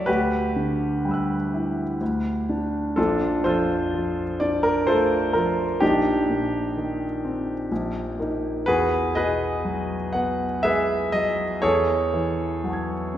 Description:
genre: classical, impressionist solo piano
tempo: 62 BPM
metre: 3/4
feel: rubato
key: unclear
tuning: A4 = 440 Hz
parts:
  - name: clear grand piano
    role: solo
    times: 0.0-13.2 s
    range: Bb1 to G#6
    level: -21 LUFS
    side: equal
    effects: none
room: wet scoring stage reverb, RT60 1.8 s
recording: heard from further back in the room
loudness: -21 LUFS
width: side -11 dB against mid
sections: 0.0-13.2 A section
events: none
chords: 0.1 Em9/D; 2.0 G/D; 3.0 Bbmaj9; 5.8 Cm9/Bb; 7.7 Eb/Bb; 8.7 Emaj9; 11.6 F#m9/E

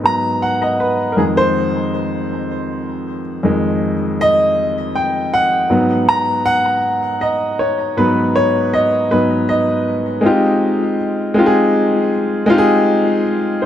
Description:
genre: R&B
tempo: 53 BPM (dotted quarters)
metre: 6/8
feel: straight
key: F minor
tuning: A4 = 439 Hz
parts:
  - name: warm baby grand piano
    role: solo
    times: 0.0-13.7 s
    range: F2 to Bb5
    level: -14 LUFS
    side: equal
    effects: ping-pong delay
room: light reverb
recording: none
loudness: -14 LUFS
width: side -10 dB against mid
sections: 0.0-10.2 A section; 10.2-13.7 B section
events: grand piano solo 0.0-10.2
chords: 0.0 Abm9; 1.2 Fm7; 5.7 Abm7; 10.2 Fm9

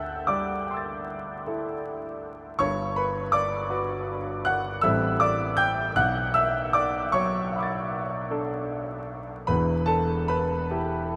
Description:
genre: classical, impressionist solo piano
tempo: 49-54 BPM (dotted quarters)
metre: 9/8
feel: rubato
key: G lydian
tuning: A4 = 440 Hz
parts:
  - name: clear concert grand piano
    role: solo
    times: 0.0-11.2 s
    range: E1 to A6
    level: -27 LUFS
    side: equal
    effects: none
room: wet huge ambient reverb, RT60 9.1 s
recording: in a vast, echoing space, vinyl crackle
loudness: -27 LUFS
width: mono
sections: 0.0-11.2 A section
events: none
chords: 0.0 D11; 2.6 Gmaj7; 4.8 Am7; 6.0 Bm7; 9.5 Em

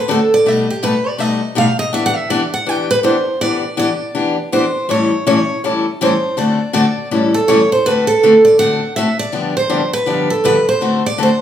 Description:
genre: jazz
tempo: 162 BPM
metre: 4/4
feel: swing 62% on 8ths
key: D mixolydian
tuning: A4 = 440 Hz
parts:
  - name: picked steel-string acoustic guitar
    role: melody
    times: 0.0-11.4 s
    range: G4 to G5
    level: -14 LUFS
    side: right 2 dB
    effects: none
  - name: picked steel-string acoustic guitar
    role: accompaniment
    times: 0.1-11.3 s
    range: G2 to A4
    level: -16 LUFS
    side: left 3 dB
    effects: none
room: wet large studio reverb, RT60 1.0 s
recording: band playing live in one room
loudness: -13 LUFS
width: side -10 dB against mid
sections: 0.0-7.8 A section; 7.8-11.4 B section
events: steel-string acoustic guitar solo 0.0-7.8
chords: 0.4 Baug7; 1.9 Em7; 4.9 A7; 6.4 D7; 7.1 A7; 7.8 D7; 9.3 G7; 10.8 D7

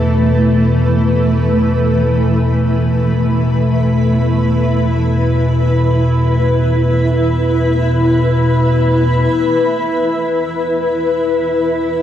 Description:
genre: dark ambient drone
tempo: free time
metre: none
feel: none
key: unclear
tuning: A4 = 439 Hz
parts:
  - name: granular cloud pad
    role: sustained chords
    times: 0.0-12.0 s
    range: E3 to F#5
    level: -15 LUFS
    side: equal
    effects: built-in reverb, lush chorus, shimmer reverb
  - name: deep rumbling drone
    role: drone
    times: 0.0-12.0 s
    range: E2 to B2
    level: -14 LUFS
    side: equal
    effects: built-in reverb
room: wet lush hall reverb, RT60 2.6 s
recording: dreamy mix soaked in reverb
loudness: -12 LUFS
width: side -10 dB against mid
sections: 0.0-9.3 A section; 9.3-12.0 B section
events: none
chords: 0.0 A5/E; 9.3 Esus2

